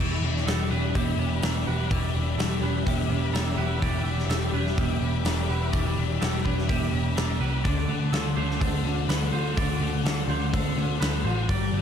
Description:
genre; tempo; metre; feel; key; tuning
rock, shoegaze and dream pop; 125 BPM; 4/4; straight; E minor; A4 = 440 Hz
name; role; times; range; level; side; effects
analog string pad; sustained chords; 0.0-11.8 s; G4 to D6; -37 LUFS; left 1 dB; ensemble chorus
twangy electric guitar; arpeggios; 0.0-11.8 s; G4 to D5; -36 LUFS; right 12 dB; lush chorus, digital delay
biting overdriven guitar; riff; 0.0-11.8 s; D3 to B4; -30 LUFS; left 12 dB; ensemble chorus
overdriven semi-hollow guitar; riff; 0.0-11.8 s; D3 to C5; -33 LUFS; right 10 dB; reverse reverb
vintage muted picked electric bass; bass; 0.0-11.8 s; E1 to D2; -27 LUFS; equal; none
big rock drum kit; drums; 0.0-11.6 s; crash cymbal, hi-hat, kick drum, snare drum; -30 LUFS; equal; none
room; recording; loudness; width
light reverb; none; -23 LUFS; side -8 dB against mid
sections
0.0-11.8 A section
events
none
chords
0.0 Em7; 7.6 D7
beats
0.47 0.95 1.43 | 1.90 2.38 2.86 3.34 | 3.82 4.29 4.77 5.25 | 5.73 6.21 6.69 7.17 | 7.65 8.13 8.61 9.09 | 9.57 10.04 10.53 11.00 | 11.48

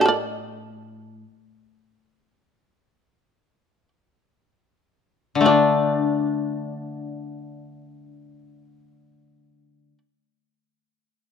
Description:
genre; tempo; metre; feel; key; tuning
japanese traditional, Japanese chamber music; free time; none; none; unclear; A4 = 437 Hz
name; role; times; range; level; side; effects
shamisen; melody; 0.0-10.0 s; A4 to D5; -21 LUFS; right 2 dB; none
koto; accompaniment; 0.0-10.0 s; A2 to D4; -21 LUFS; left 4 dB; none
room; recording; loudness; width
light reverb; close, detailed microphones; -19 LUFS; side -7 dB against mid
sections
0.0-5.5 A section; 5.5-11.3 B section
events
slowing down 0.0-5.5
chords
none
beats
free time

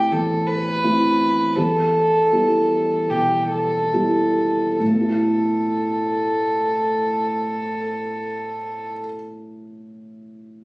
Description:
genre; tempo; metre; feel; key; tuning
neoclassical piano and strings; 67-86 BPM; 4/4; rubato; A minor; A4 = 440 Hz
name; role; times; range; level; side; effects
dark violin; melody; 0.0-8.9 s; G4 to B4; -20 LUFS; equal; none
felt-muted upright piano; accompaniment; 0.0-10.6 s; E2 to E4; -22 LUFS; equal; none
room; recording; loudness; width
light reverb; recorded on a phone in the room, studio reverb; -18 LUFS; side -22 dB against mid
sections
0.0-4.8 A section; 4.8-8.3 B section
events
slowing down 0.0-4.8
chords
0.0 Amadd9; 1.6 Em; 4.8 Asus2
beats
0.12 0.83 | 1.56 2.32 3.10 3.92 | 4.80 5.67 6.53 7.40

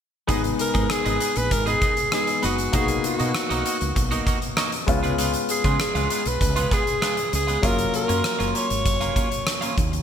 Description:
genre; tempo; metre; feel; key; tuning
1980s-style pop; 98 BPM; 4/4; straight; unclear; A4 = 440 Hz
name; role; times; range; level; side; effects
clear concert grand piano; accompaniment; 0.3-10.0 s; F#3 to G#4; -28 LUFS; left 5 dB; none
twelve-string electric guitar; riff; 0.3-10.0 s; G#3 to G#4; -29 LUFS; right 4 dB; wide subtle chorus
woody fretless electric bass; bass; 0.3-10.0 s; F#1 to C#3; -27 LUFS; right 1 dB; lush chorus
huge arena drum kit; drums; 0.3-10.0 s; hi-hat, kick drum, rim click; -25 LUFS; equal; gated reverb
bright alto saxophone; melody; 0.6-9.7 s; F#4 to C#5; -25 LUFS; right 1 dB; digital delay
room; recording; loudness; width
moderate plate reverb, RT60 2.0 s, small room ambience; bright 1980s-style digital production; -20 LUFS; side -8 dB against mid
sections
0.3-10.0 A section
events
none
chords
0.3 G#m; 2.7 Bmaj7; 4.9 C#7; 7.6 F#maj7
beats
| 0.29 0.90 1.51 2.12 | 2.74 3.35 3.96 4.57 | 5.19 5.80 6.41 7.02 | 7.63 8.25 8.86 9.47

